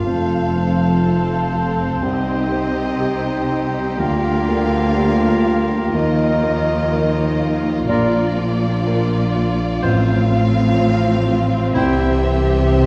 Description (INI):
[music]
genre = cinematic, emotional film score for orchestra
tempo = 62 BPM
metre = 4/4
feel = rubato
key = unclear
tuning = A4 = 439 Hz
[part]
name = warm studio violin section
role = melody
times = 0.0-12.9 s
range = D5 to F5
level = -30 LUFS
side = equal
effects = none
[part]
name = bright clarinet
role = second line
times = 0.0-12.1 s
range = Eb4 to F4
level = -30 LUFS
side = equal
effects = none
[part]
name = warm studio violin section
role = second line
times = 0.0-12.9 s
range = F4 to A4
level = -32 LUFS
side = equal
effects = none
[part]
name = dark grand piano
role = accompaniment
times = 0.0-12.9 s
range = A1 to C5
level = -26 LUFS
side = equal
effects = none
[part]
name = rich studio viola section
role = accompaniment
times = 0.0-12.9 s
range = Bb3 to C4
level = -28 LUFS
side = equal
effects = none
[part]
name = dark French horn section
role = sustained chords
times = 0.0-12.9 s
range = E3 to G4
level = -27 LUFS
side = equal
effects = none
[part]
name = rich studio double bass section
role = bass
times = 0.0-12.9 s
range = F1 to Eb2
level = -23 LUFS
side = equal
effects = none
[part]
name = warm studio cello section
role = bass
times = 0.0-12.9 s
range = F2 to Eb3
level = -26 LUFS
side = equal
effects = none
[part]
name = clear oboe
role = second line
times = 0.1-12.1 s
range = Bb4 to C5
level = -32 LUFS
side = equal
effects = none
[part]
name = mellow hollow silver concert flute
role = second line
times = 0.1-12.2 s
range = D5 to A5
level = -28 LUFS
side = equal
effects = none
[sound]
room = wet scoring stage reverb, RT60 1.4 s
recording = dark, warm production, faint mains hum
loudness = -18 LUFS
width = mono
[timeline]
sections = 0.0-12.9 A section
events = none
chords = 0.1 F; 2.0 Cm; 4.0 Gm7/D; 5.9 Ebsus2; 7.9 Bb; 9.8 F/A; 11.8 C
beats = | 0.07 1.06 2.03 3.02 | 4.00 4.97 5.94 6.92 | 7.89 8.87 9.84 10.79 | 11.76 12.73